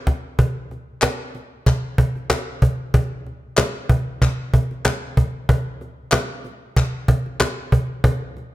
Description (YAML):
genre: pop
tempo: 94 BPM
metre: 4/4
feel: swing 56% on 16ths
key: none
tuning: none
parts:
  - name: cajon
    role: drums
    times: 0.1-8.5 s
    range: none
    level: -18 LUFS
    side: equal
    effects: none
  - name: group handclap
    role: percussion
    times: 1.0-7.6 s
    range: none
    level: -27 LUFS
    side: left 4 dB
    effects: none
room: moderate recital hall reverb, RT60 1.5 s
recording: none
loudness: -18 LUFS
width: side -16 dB against mid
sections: 0.0-8.5 A section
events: none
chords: none